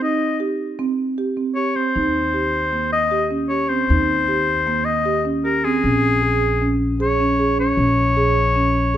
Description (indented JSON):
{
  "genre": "contemporary instrumental, chamber music in an uneven meter",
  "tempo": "154 BPM",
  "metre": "5/4",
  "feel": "straight",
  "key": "unclear",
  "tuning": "A4 = 440 Hz",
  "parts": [
    { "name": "clear oboe", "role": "melody", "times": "0.0-9.0 s", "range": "Ab4 to Eb5", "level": "-20 LUFS", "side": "left 3 dB", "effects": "none" },
    { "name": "marimba with medium mallets", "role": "arpeggios", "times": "0.0-9.0 s", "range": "Bb3 to Ab4", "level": "-21 LUFS", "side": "right 3 dB", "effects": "none" },
    { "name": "upright bass", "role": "bass", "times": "2.0-9.0 s", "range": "Bb1 to Eb2", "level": "-24 LUFS", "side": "left 1 dB", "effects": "none" }
  ],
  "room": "moderate scoring stage reverb, RT60 1.6 s",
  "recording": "minimal, uncompressed stereo recording",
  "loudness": "-17 LUFS",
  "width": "side -11 dB against mid",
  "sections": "0.0-9.0 A section",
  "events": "none",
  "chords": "0.0 Cm; 2.0 Eb; 5.8 Bbm7",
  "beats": "| 0.01 0.40 0.79 1.18 1.57 | 1.96 2.35 2.73 3.12 3.51 | 3.90 4.29 4.68 5.07 5.45 | 5.84 6.23 6.62 7.00 7.39 | 7.78 8.17 8.56 8.94"
}